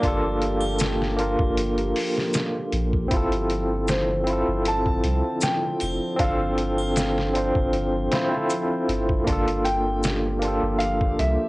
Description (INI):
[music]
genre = trip hop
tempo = 78 BPM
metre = 4/4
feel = swing 53% on 16ths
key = G dorian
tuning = A4 = 440 Hz
[part]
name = felt-muted upright piano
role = melody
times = 0.0-11.5 s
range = C5 to A5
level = -29 LUFS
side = equal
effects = cassette tape, tape echo
[part]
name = barky tine electric piano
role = accompaniment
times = 0.0-11.5 s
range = Bb3 to C5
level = -24 LUFS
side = equal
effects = overdrive, tremolo, cassette tape, tape echo
[part]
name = warbly tape-like pad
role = sustained chords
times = 0.0-11.5 s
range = D3 to G4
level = -32 LUFS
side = equal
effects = chorus, built-in reverb, cassette tape
[part]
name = soft dub sub bass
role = bass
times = 0.0-11.4 s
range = F1 to C2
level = -28 LUFS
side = equal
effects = transformer saturation
[part]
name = trip hop sampler-style drum kit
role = drums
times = 0.0-11.4 s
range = hi-hat, kick drum, snare drum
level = -27 LUFS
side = equal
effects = small room ambience, cassette tape
[part]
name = triangle and maracas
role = percussion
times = 0.6-10.2 s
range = none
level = -37 LUFS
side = left 1 dB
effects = none
[sound]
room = light reverb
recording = home recording on cassette, nothing above 10.6 kHz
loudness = -21 LUFS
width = side -21 dB against mid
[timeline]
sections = 0.0-11.5 A section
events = none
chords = 0.0 Gm7; 3.1 Dm7; 9.3 Gm7